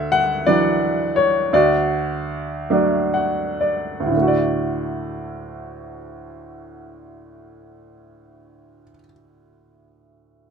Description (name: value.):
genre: classical, lyrical solo piano.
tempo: 36-58 BPM (dotted quarters).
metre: 6/8.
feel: rubato.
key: D major.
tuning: A4 = 443 Hz.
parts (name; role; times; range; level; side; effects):
bright upright piano; solo; 0.0-10.5 s; D2 to F#5; -18 LUFS; equal; none.
room: light reverb.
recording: none.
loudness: -17 LUFS.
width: side -6 dB against mid.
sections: 0.0-4.1 A section; 4.1-10.5 B section.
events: slowing down 0.0-4.1; upright piano fill 2.7-4.1.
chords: 0.0 Dadd9; 1.5 D.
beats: 0.47 | 1.52 2.69 | 4.15 5.77 | 7.33 8.90.